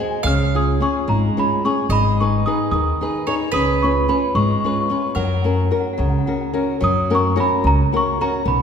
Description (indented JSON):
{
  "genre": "italian folk, Italian serenade",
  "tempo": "73 BPM (dotted quarters)",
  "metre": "6/8",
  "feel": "straight",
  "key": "F# major",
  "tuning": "A4 = 440 Hz",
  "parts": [
    { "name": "small celesta", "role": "melody", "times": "0.0-8.6 s", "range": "F#5 to E#6", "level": "-22 LUFS", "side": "equal", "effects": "none" },
    { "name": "flamenco guitar", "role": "accompaniment", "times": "0.0-8.6 s", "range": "C#3 to B#4", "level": "-21 LUFS", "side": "left 2 dB", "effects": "none" },
    { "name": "mandolin", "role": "second line", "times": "0.2-6.5 s", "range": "A#4 to E#5", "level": "-26 LUFS", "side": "right 4 dB", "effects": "none" },
    { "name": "upright bass", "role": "bass", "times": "0.2-8.6 s", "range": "G#1 to F#2", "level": "-21 LUFS", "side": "equal", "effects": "none" }
  ],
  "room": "wet scoring stage reverb, RT60 1.5 s",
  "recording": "heard from further back in the room",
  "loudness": "-16 LUFS",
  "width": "side -7 dB against mid",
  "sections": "0.0-6.8 A section; 6.8-8.6 A section",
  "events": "none",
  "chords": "0.2 C#; 1.9 G#m; 3.5 C#7; 5.2 F#"
}